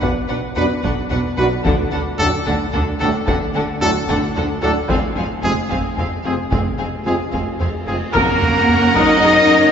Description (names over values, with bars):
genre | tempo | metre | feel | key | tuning
cinematic, epic orchestral film score | 74 BPM (dotted quarters) | 6/8 | straight | Gb lydian | A4 = 440 Hz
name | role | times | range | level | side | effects
clear symphonic violin section | melody | 0.0-9.7 s | Bb4 to Gb5 | -25 LUFS | left 4 dB | none
rich symphonic violin section | second line | 0.0-9.7 s | Ab4 to Gb5 | -26 LUFS | left 3 dB | none
rich symphonic viola section | accompaniment | 0.0-9.6 s | C4 to Bb4 | -25 LUFS | equal | none
rich symphonic double bass section | bass | 0.0-9.6 s | F1 to Gb2 | -25 LUFS | right 2 dB | none
warm studio cello section | bass | 0.0-9.7 s | F2 to Eb4 | -22 LUFS | equal | none
taiko ensemble | drums | 0.0-9.5 s | none | -24 LUFS | equal | none
dark French horn section | sustained chords | 0.6-9.7 s | C4 to Bb4 | -26 LUFS | equal | none
warm trombone section | sustained chords | 0.6-9.7 s | Gb2 to Bb3 | -28 LUFS | right 3 dB | none
bright trumpet | stabs | 0.6-9.7 s | Ab4 to Eb5 | -22 LUFS | equal | none
cymbal swell and tam-tam | percussion | 4.9-9.7 s | none | -29 LUFS | right 1 dB | none
rich symphonic string section | sustained chords | 8.1-9.7 s | Bb3 to Gb5 | -24 LUFS | equal | none
timpani | percussion | 8.1-8.9 s | Gb2 | -28 LUFS | left 1 dB | none
room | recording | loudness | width
wet church reverb, RT60 2.9 s | recorded in a church or concert hall, nothing above 7.7 kHz | -15 LUFS | side -7 dB against mid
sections
0.0-8.2 A section; 8.2-9.7 B section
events
build-up 0.0-8.2; band accent 8.2-8.7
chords
0.0 Cbm; 1.7 D; 4.9 Fm; 8.2 Gb